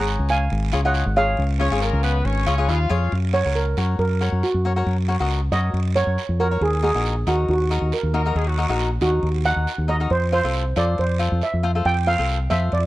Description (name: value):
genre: calypso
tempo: 138 BPM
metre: 4/4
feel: straight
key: F# major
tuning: A4 = 438 Hz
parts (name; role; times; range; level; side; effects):
- steel pan; melody; 0.0-12.8 s; F#4 to A#5; -23 LUFS; right 2 dB; none
- cavaquinho; accompaniment; 0.0-12.8 s; D#4 to D#5; -27 LUFS; left 4 dB; none
- fingered electric bass; bass; 0.0-12.9 s; G#1 to F#2; -21 LUFS; equal; none
- guiro; percussion; 0.1-12.9 s; none; -34 LUFS; right 10 dB; none
- clear horn section; second line; 1.6-3.1, 8.1-8.9 s; F#3 to E#5; -27 LUFS; left 2 dB; none
room: small room reverb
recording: dry, close 1970s-style studio recording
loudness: -18 LUFS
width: side -17 dB against mid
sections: 0.0-3.1 A section; 3.1-12.9 B section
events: steel pan solo 3.1-12.9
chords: 0.0 C#; 3.1 F#; 6.6 D#m; 10.1 F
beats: 0.07 0.51 0.94 | 1.38 1.81 2.25 2.69 | 3.12 3.56 4.00 4.43 | 4.87 5.30 5.74 6.18 | 6.62 7.05 7.49 7.92 | 8.36 8.80 9.23 9.67 | 10.11 10.54 10.98 11.42 | 11.85 12.29 12.73